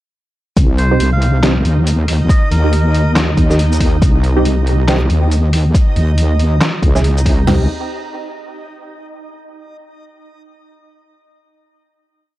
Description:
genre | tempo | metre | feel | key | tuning
deep dubstep | 139 BPM | 4/4 | swing 60% on 16ths, half-time | C phrygian | A4 = 437 Hz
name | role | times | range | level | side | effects
wobble bass | bass | 0.6-7.7 s | C2 to Eb2 | -13 LUFS | equal | chorus, transformer saturation
deep house drum kit | drums | 0.6-7.6 s | crash cymbal, kick drum, snare drum, toms | -13 LUFS | equal | overdrive, studio reverb
trip hop sampler-style drum kit | drums | 0.6-7.4 s | handclaps, hi-hat, shaker, snare drum | -19 LUFS | equal | studio reverb
backwards swelling texture | texture | 1.6-7.5 s | Eb4 to Eb5 | -27 LUFS | right 2 dB | built-in reverb
melodica | melody | 0.8-3.1 s | Bb4 to F5 | -24 LUFS | right 1 dB | dub echo
filtered dub chord stab | stabs | 0.9-7.6 s | Bb3 to Ab4 | -22 LUFS | right 3 dB | phaser, dub echo
room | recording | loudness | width
little or no reverb | dry, gritty hardware recording | -11 LUFS | side -16 dB against mid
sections
0.6-7.5 drop; 7.5-9.2 final chord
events
drop 0.6-7.5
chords
0.6 Cm; 2.3 Eb5; 4.0 Cm; 5.7 N.C.; 7.5 Cm

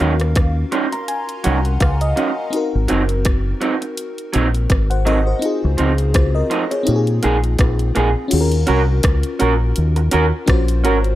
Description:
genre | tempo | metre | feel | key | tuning
lovers rock reggae | 83 BPM | 4/4 | swing 57% on 16ths | Eb dorian | A4 = 440 Hz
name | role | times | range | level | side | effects
FM electric piano with soft pad layer | accompaniment | 0.0-11.2 s | C4 to C6 | -22 LUFS | left 2 dB | chorus
electric guitar through a small old amp | stabs | 0.0-11.0 s | F3 to Bb4 | -20 LUFS | right 3 dB | none
deep dub fingered electric bass | bass | 0.0-11.2 s | Gb1 to Bb2 | -17 LUFS | equal | none
drum and bass drum kit | drums | 0.2-11.2 s | crash cymbal, hi-hat, kick drum, rim click | -19 LUFS | equal | none
room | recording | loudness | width
digital ambience | none | -15 LUFS | side -14 dB against mid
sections
0.0-8.3 A section; 8.3-11.2 B section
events
FM electric piano fill 0.4-2.5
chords
0.0 Ebm7; 2.5 Ab7; 5.4 Dbmaj9; 6.9 Bb7sus4; 8.3 Ebm7

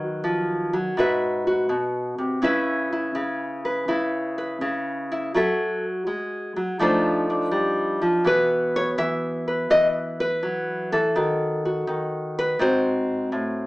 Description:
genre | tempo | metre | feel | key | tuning
solo jazz | 82 BPM | 4/4 | swing 68% on 8ths | C# minor | A4 = 440 Hz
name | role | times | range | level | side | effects
nylon-string guitar | solo | 0.0-13.7 s | G#2 to E5 | -21 LUFS | equal | none
room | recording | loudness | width
wet studio reverb, RT60 0.6 s | band playing live in one room, small speaker sound | -21 LUFS | side -19 dB against mid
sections
0.0-13.7 A section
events
none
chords
0.0 B/D#; 1.0 G#7alt; 2.4 C#m7; 5.3 F#m7; 6.8 F13; 8.2 Esus2; 11.2 D#dim; 12.6 G#7

